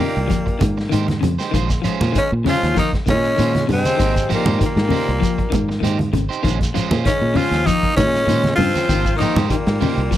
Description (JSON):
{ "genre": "afrobeat", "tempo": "98 BPM", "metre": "4/4", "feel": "swing 53% on 16ths", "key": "Bb dorian", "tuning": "A4 = 438 Hz", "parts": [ { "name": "raspy tenor saxophone", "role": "melody", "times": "0.0-10.2 s", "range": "Bb3 to F4", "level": "-21 LUFS", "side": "equal", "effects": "none" }, { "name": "raspy alto saxophone", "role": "second line", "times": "0.0-10.2 s", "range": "G3 to Db4", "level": "-30 LUFS", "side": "right 4 dB", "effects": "none" }, { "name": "warm baritone saxophone", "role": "second line", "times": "0.0-10.2 s", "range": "Bb2 to F3", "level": "-28 LUFS", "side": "left 14 dB", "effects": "none" }, { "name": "clean electric guitar", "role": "arpeggios", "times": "0.0-10.2 s", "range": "C3 to F3", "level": "-24 LUFS", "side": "left 8 dB", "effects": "spring reverb" }, { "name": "electric guitar at the edge of break-up", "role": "stabs", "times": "0.0-10.2 s", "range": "Ab3 to C5", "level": "-26 LUFS", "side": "right 8 dB", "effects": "spring reverb" }, { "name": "vintage drum kit", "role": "drums", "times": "0.0-10.2 s", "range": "hi-hat, kick drum, snare drum", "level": "-24 LUFS", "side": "equal", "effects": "none" }, { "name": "shekere", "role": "percussion", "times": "0.0-10.2 s", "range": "none", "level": "-27 LUFS", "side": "right 3 dB", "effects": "none" }, { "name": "fingered electric bass", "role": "bass", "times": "0.2-10.1 s", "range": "Ab1 to Bb2", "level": "-21 LUFS", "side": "equal", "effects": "none" }, { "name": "congas", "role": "percussion", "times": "0.3-10.0 s", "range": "none", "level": "-22 LUFS", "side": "right 2 dB", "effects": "none" } ], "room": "little or no reverb", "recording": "none", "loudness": "-16 LUFS", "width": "side -12 dB against mid", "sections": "0.0-10.2 A section", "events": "none", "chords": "0.0 Abmaj9; 1.5 Bbm9; 4.0 Abmaj9; 6.4 Bbm9; 8.9 Abmaj9" }